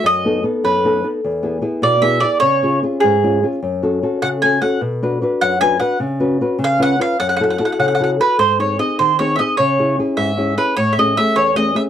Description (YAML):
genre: italian folk, Italian serenade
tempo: 101 BPM (dotted quarters)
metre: 6/8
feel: straight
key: F# minor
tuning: A4 = 435 Hz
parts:
  - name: mandolin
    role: melody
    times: 0.0-11.8 s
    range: G#4 to G#5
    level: -15 LUFS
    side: right 1 dB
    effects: none
  - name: nylon-string guitar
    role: accompaniment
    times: 0.0-11.9 s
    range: E2 to B4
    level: -18 LUFS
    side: left 2 dB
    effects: none
room: little or no reverb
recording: dry, close 1970s-style studio recording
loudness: -14 LUFS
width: side -9 dB against mid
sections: 0.0-8.4 A section; 8.4-11.9 B section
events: none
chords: 0.1 B7/F#; 1.2 E; 2.4 C#; 3.6 F#m; 4.8 Bm; 6.0 C#7sus4; 6.6 C#7; 7.2 F#m7; 8.4 G#; 9.6 C#m; 10.8 Amaj7